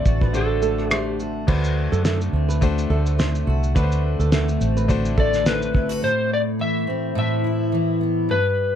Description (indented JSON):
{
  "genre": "acoustic pop",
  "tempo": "106 BPM",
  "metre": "4/4",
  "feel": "swing 55% on 16ths",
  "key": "unclear",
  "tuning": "A4 = 440 Hz",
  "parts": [
    { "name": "electric slide guitar", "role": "melody", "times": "0.0-1.2, 5.2-8.8 s", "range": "A4 to E5", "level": "-23 LUFS", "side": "left 2 dB", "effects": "none" },
    { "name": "bright concert grand piano", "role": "accompaniment", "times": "0.0-6.1 s", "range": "A3 to C5", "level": "-30 LUFS", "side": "left 7 dB", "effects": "none" },
    { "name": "fingerpicked steel-string acoustic guitar", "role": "accompaniment", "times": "0.0-8.8 s", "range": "G2 to F#4", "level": "-24 LUFS", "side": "equal", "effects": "double-tracked left and right" },
    { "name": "vintage muted fingered electric bass", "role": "bass", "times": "0.0-6.0 s", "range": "A1 to F#2", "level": "-22 LUFS", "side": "equal", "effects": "none" },
    { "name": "cloth-damped thuddy drum kit", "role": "drums", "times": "0.1-6.0 s", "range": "crash cymbal, kick drum, rim click, shaker, snare drum", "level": "-22 LUFS", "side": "equal", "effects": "none" },
    { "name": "nylon-string guitar", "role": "arpeggios", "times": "0.2-5.9 s", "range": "C4 to C5", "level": "-30 LUFS", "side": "right 8 dB", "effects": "digital delay" }
  ],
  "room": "little or no reverb",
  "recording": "dark, warm production",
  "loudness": "-18 LUFS",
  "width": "side -9 dB against mid",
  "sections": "0.0-1.5 A section; 1.5-6.0 B section; 6.0-8.8 C section",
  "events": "none",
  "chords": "0.0 D7; 6.0 Amadd9"
}